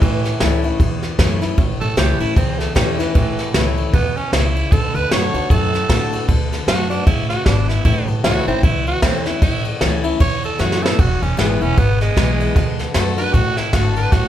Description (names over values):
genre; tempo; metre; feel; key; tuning
rockabilly; 153 BPM; 4/4; swing 59% on 8ths; A major; A4 = 438 Hz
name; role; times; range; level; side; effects
breathy tenor saxophone; melody; 0.0-14.3 s; E3 to C#5; -22 LUFS; right 4 dB; none
picked steel-string acoustic guitar; accompaniment; 0.0-14.3 s; E2 to F#4; -23 LUFS; left 4 dB; none
upright bass; bass; 0.0-14.3 s; E1 to A2; -21 LUFS; equal; none
jazz brush drum kit; drums; 0.0-14.2 s; kick drum, ride cymbal, snare drum; -18 LUFS; equal; none
room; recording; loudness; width
light reverb; band playing live in one room; -15 LUFS; side -11 dB against mid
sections
0.0-14.3 A section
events
drum fill 10.6-11.0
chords
0.0 A; 4.7 D; 7.9 A; 11.0 E; 12.6 D